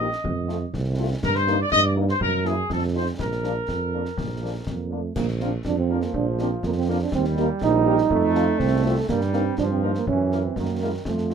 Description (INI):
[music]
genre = military-style march for wind band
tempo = 122 BPM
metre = 2/4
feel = straight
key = Bb major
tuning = A4 = 440 Hz
[part]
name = dark trumpet section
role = melody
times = 0.0-11.3 s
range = Ab4 to Eb5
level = -25 LUFS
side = left 2 dB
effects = none
[part]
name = mellow French horn section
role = accompaniment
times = 0.0-11.3 s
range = Fb3 to G4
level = -29 LUFS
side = left 6 dB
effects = none
[part]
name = mellow tuba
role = bass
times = 0.0-11.3 s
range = Bb1 to G2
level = -25 LUFS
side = right 3 dB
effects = none
[part]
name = concert snare drum, concert bass drum and clash cymbals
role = drums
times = 0.1-11.3 s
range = none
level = -33 LUFS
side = left 2 dB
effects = none
[part]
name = mellow euphonium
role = second line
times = 4.7-11.3 s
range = Ab3 to Eb4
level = -24 LUFS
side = right 6 dB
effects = none
[part]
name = bright trombone section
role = sustained chords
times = 5.6-11.3 s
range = Eb3 to A3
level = -28 LUFS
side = right 1 dB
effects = none
[sound]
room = light reverb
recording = close, detailed microphones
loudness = -21 LUFS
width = side -7 dB against mid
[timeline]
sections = 0.0-5.2 A section; 5.2-11.3 A section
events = none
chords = 0.2 F; 1.2 Eb/G; 2.2 Gb7; 2.7 F7; 3.2 Bb; 7.1 Eb; 8.1 F; 9.1 Eb/G; 10.1 Gb7